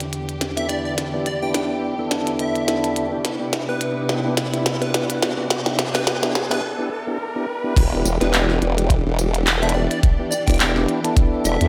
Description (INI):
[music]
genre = glitch hop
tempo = 106 BPM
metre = 4/4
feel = swing 56% on 16ths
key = E minor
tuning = A4 = 440 Hz
[part]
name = warm studio string section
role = sustained chords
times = 0.0-11.7 s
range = E2 to G4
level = -32 LUFS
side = equal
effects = sidechain pumping, low-pass filter
[part]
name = glitchy drum kit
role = drums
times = 0.0-11.7 s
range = crash cymbal, handclaps, hi-hat, snare drum, tambourine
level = -25 LUFS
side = equal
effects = gated reverb
[part]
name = riser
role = sound effects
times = 0.8-7.8 s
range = none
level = -36 LUFS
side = equal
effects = none
[part]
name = plucky unison lead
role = melody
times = 0.6-11.7 s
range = B4 to G5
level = -31 LUFS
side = equal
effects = phaser, digital delay
[part]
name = mellow tonewheel organ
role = stabs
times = 0.6-11.7 s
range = B3 to A4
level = -27 LUFS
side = equal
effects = overdrive, chorus vibrato, slow rotary speaker, sidechain pumping, low-pass filter, digital delay
[part]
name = formant-sweep wobble bass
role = bass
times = 7.8-11.7 s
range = E1 to E2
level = -22 LUFS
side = equal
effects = chorus, tube saturation
[part]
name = electronic kick drum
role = drums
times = 7.8-11.3 s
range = none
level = -19 LUFS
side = equal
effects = none
[sound]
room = wet lush hall reverb, RT60 1.6 s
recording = bright 1980s-style digital production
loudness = -21 LUFS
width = mono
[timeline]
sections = 0.0-7.8 A section; 7.8-11.7 B section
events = build-up 0.0-7.8; drum fill 0.0-6.6; filter sweep on string section 0.0-7.8; riser 0.8-7.8; break 6.6-7.8; drop 7.8-11.7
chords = 0.0 Em7; 3.2 Cmaj7; 7.8 Em7